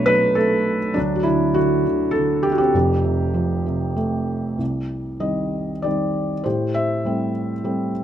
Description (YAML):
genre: classical, lyrical solo piano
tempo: 100 BPM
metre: 3/4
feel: rubato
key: C dorian from 4.6 s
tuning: A4 = 440 Hz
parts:
  - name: felt-muted upright piano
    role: solo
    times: 0.0-8.0 s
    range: F1 to E5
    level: -18 LUFS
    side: equal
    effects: none
room: light reverb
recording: close, detailed microphones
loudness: -18 LUFS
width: side -10 dB against mid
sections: 0.0-4.6 A section; 4.6-8.0 B section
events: none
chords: 0.0 Bm7; 1.0 D; 2.7 Fadd9; 4.6 Cm; 6.5 Am7